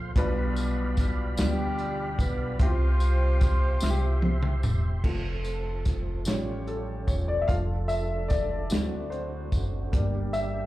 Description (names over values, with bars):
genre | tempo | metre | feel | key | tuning
slow gospel | 49 BPM (dotted quarters) | 6/8 | straight | F major | A4 = 442 Hz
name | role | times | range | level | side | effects
mellow horn section | melody | 0.0-4.6 s | G3 to C5 | -33 LUFS | equal | slapback echo
warm upright piano | accompaniment | 0.0-10.7 s | B2 to F5 | -32 LUFS | left 2 dB | slapback echo
tonewheel organ | sustained chords | 0.0-10.7 s | D3 to C6 | -38 LUFS | right 4 dB | overdrive, chorus vibrato, slow rotary speaker
upright bass | bass | 0.0-10.7 s | E1 to D2 | -28 LUFS | equal | none
warm soul drum kit | drums | 0.2-10.5 s | crash cymbal, hi-hat, kick drum, snare drum, toms | -27 LUFS | equal | none
tambourine | percussion | 0.6-10.7 s | none | -43 LUFS | left 2 dB | none
mellow French horn section | sustained chords | 5.1-10.7 s | G3 to A4 | -41 LUFS | right 1 dB | none
room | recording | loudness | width
small room ambience | live gig heard through the venue's PA, club reverb | -24 LUFS | side -16 dB against mid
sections
0.0-5.0 A section; 5.0-10.7 B section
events
drum fill 3.8-5.0; upright piano solo 5.0-10.7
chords
0.2 G7/B; 2.6 Csus4; 3.8 C; 5.0 F; 6.3 A7b13; 7.5 Dm/F; 8.7 D7; 9.9 Gm